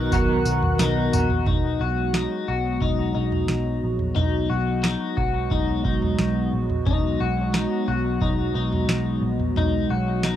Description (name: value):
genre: dream pop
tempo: 89 BPM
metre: 4/4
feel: straight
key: B major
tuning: A4 = 439 Hz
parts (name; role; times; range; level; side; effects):
- shimmering bell with halo; melody; 0.0-1.1 s; F#6; -35 LUFS; right 1 dB; ensemble chorus, phaser, cassette tape, analog delay, plate reverb
- semi-hollow electric guitar; accompaniment; 0.0-1.5 s; B2 to A#4; -29 LUFS; right 12 dB; tremolo, wide subtle chorus, cassette tape, plate reverb
- hollow soft pad; sustained chords; 0.0-10.4 s; D#3 to A#4; -25 LUFS; equal; chorus, cassette tape, plate reverb
- clean electric guitar; arpeggios; 0.0-10.4 s; D#4 to F#4; -27 LUFS; left 9 dB; analog chorus, cassette tape, analog delay, plate reverb
- vintage muted picked electric bass; bass; 0.0-10.3 s; A#1 to B1; -26 LUFS; right 1 dB; none
- booming analog drum machine; drums; 0.1-10.4 s; kick drum, snare drum, tambourine, toms; -25 LUFS; right 2 dB; none
room: moderate studio reverb, RT60 0.5 s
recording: home recording on cassette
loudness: -20 LUFS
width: side -11 dB against mid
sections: 0.0-1.5 A section; 1.5-10.4 B section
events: none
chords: 0.0 Bmaj7; 1.5 B6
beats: 0.12 0.80 | 1.47 2.14 2.82 3.49 | 4.17 4.84 5.51 6.19 | 6.86 7.54 8.21 8.88 | 9.56 10.23